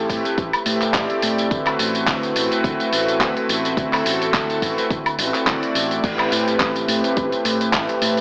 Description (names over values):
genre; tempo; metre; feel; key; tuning
nu-disco, nu disco; 106 BPM; 4/4; swing 56% on 16ths; unclear; A4 = 445 Hz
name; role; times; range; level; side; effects
warm analog pad; accompaniment; 0.0-8.2 s; A3 to D5; -23 LUFS; equal; chorus, sidechain pumping, cassette tape, tape echo
fingered electric bass; bass; 0.0-8.2 s; A1 to A2; -31 LUFS; equal; tube saturation
dusty soul sampler-style drum kit; drums; 0.1-8.2 s; crash cymbal, handclaps, hi-hat, tambourine, woodblock; -24 LUFS; equal; small room reverb, cassette tape
electronic kick drum; drums; 0.1-7.9 s; none; -30 LUFS; equal; small room reverb, cassette tape
room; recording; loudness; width
light reverb; home recording on cassette, AM radio sound; -20 LUFS; mono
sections
0.0-8.2 A section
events
none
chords
0.0 Am7; 1.5 D13; 6.0 Am7